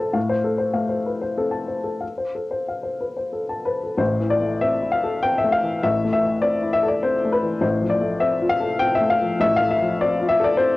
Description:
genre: neoclassical minimalist piano.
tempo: 89-103 BPM.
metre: 3/4.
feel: rubato.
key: A minor.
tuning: A4 = 440 Hz.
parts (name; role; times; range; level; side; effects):
warm upright piano; solo; 0.0-10.8 s; A1 to E6; -19 LUFS; left 2 dB; cassette tape.
room: moderate booth ambience, RT60 0.2 s.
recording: home recording on cassette.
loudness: -19 LUFS.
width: side -18 dB against mid.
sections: 0.0-4.0 A section; 4.0-10.8 B section.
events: none.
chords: 0.2 F/A; 4.0 Am; 7.6 F/A.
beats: | 0.16 0.75 1.37 | 2.02 2.68 3.34 | 4.00 4.62 5.23 | 5.83 6.44 7.04 | 7.63 8.22 8.81 | 9.41 9.99 10.59.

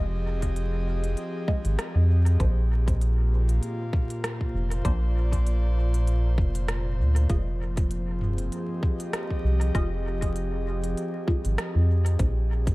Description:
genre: ambient dub.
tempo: 98 BPM.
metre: 4/4.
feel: swing 56% on 16ths.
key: F dorian.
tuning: A4 = 436 Hz.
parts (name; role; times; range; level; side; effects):
airy breathy pad; sustained chords; 0.0-12.7 s; Bb2 to Eb5; -32 LUFS; equal; chorus.
filtered dub chord stab; stabs; 0.0-12.3 s; Ab3 to Eb5; -37 LUFS; left 1 dB; phaser, analog chorus, dub echo.
round analog bass; bass; 0.0-12.7 s; F1 to F2; -23 LUFS; equal; tube saturation.
electronic kick drum; drums; 0.4-12.7 s; none; -25 LUFS; equal; none.
organic electronic drum kit; drums; 0.4-12.7 s; hi-hat, rim click, toms; -35 LUFS; equal; dub echo.
room: little or no reverb.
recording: echo-heavy mix, vinyl crackle.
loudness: -23 LUFS.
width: side -21 dB against mid.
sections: 0.0-12.7 A section.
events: none.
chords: 0.0 Fm7; 2.4 Bbadd9; 7.3 Fm7; 12.2 Bbadd9.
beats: 0.56 1.17 1.79 | 2.40 3.01 3.62 4.24 | 4.85 5.46 6.07 6.68 | 7.30 7.91 8.52 9.13 | 9.75 10.36 10.97 11.58 | 12.20.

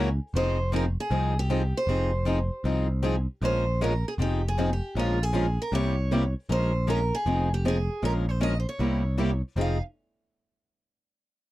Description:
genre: acoustic string swing (jazz manouche).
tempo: 156 BPM.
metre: 4/4.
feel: swing 64% on 8ths.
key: F minor.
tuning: A4 = 440 Hz.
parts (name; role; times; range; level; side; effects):
picked steel-string acoustic guitar; melody; 0.0-9.8 s; F4 to F5; -31 LUFS; right 1 dB; none.
picked steel-string acoustic guitar; accompaniment; 0.0-9.8 s; C3 to Bb4; -32 LUFS; right 6 dB; none.
picked swing-style acoustic guitar; accompaniment; 0.0-9.8 s; C3 to Bb4; -30 LUFS; left 5 dB; none.
modern bright picked electric bass; bass; 0.0-9.8 s; F1 to Db2; -26 LUFS; equal; none.
room: little or no reverb.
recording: dry, close 1970s-style studio recording.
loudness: -24 LUFS.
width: side -16 dB against mid.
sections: 0.0-3.4 A section; 3.4-9.6 B section; 9.6-11.1 C section.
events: none.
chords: 0.3 Fm7; 3.4 Bbm9; 4.2 Fm7; 5.0 Bbm7; 5.7 C7b9; 6.5 Bbm9; 7.3 Fm7; 8.0 Bbm7; 8.8 C7b9; 9.6 Fm7.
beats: | 0.34 0.73 1.11 1.50 | 1.88 2.26 2.65 3.03 | 3.42 3.80 4.18 4.57 | 4.95 5.34 5.72 6.11 | 6.49 6.88 7.26 7.65 | 8.03 8.41 8.80 9.19 | 9.57.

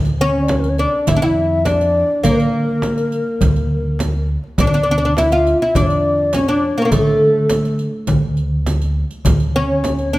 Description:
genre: Arabic maqam ensemble.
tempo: 103 BPM.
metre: 4/4.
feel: straight.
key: D maqam nahawand.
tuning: A4 = 437 Hz.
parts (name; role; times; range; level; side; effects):
upright bass; bass; 0.0-10.2 s; D2 to D3; -19 LUFS; equal; none.
riq; percussion; 0.1-10.2 s; none; -30 LUFS; right 4 dB; none.
oud; melody; 0.2-10.2 s; A3 to F4; -18 LUFS; equal; none.
breathy mellow low ney; second line; 0.2-10.2 s; A4 to G5; -20 LUFS; left 2 dB; none.
darbuka; percussion; 0.2-10.1 s; none; -23 LUFS; left 1 dB; none.
frame drum; percussion; 0.5-10.0 s; none; -23 LUFS; right 1 dB; none.
room: moderate recital hall reverb, RT60 1.6 s.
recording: none.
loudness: -14 LUFS.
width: side -17 dB against mid.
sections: 0.0-10.2 A section.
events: none.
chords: none.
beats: 0.50 1.08 1.67 | 2.25 2.84 3.42 4.00 | 4.59 5.17 5.75 6.34 | 6.92 7.50 8.09 8.67 | 9.26 9.84.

